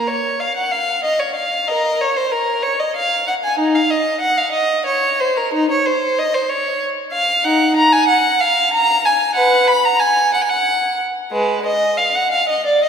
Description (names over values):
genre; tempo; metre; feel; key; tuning
classical, baroque-style suite movement for unaccompanied violin; 62 BPM (dotted quarters); 6/8; rubato; Bb minor; A4 = 441 Hz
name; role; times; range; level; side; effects
rich violin; solo; 0.0-12.9 s; Ab3 to Cb6; -14 LUFS; equal; none
room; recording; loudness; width
wet church reverb, RT60 2.8 s; minimal, uncompressed stereo recording; -14 LUFS; side -7 dB against mid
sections
0.0-12.9 A section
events
none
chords
none